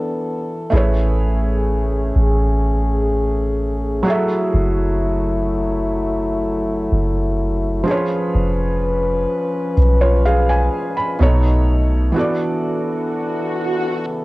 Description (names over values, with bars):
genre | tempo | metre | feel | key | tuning
contemporary R&B | 63 BPM | 4/4 | straight | F# minor | A4 = 440 Hz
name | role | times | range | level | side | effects
felt-muted upright piano | accompaniment | 0.0-14.2 s | B2 to B5 | -22 LUFS | right 1 dB | cassette tape
mellow French horn section | sustained chords | 0.0-14.2 s | C#3 to B4 | -22 LUFS | left 2 dB | cassette tape
soft 808-style bass | bass | 0.7-12.1 s | E#1 to B1 | -18 LUFS | equal | none
swell | sound effects | 12.7-14.1 s | none | -25 LUFS | right 1 dB | none
room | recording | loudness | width
light reverb | home recording on cassette | -16 LUFS | side -20 dB against mid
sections
0.0-14.2 A section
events
break 12.2-14.2; swell 12.7-14.2; felt piano fill 14.1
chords
0.0 E7sus4; 0.7 Amaj9; 4.1 F#m9; 7.9 C#7/E#; 11.2 B7; 12.2 E7sus4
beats
| 0.73 1.68 2.63 3.59 | 4.54 5.49 6.44 7.39 | 8.35 9.30 10.25 11.21 | 12.16 13.11 14.06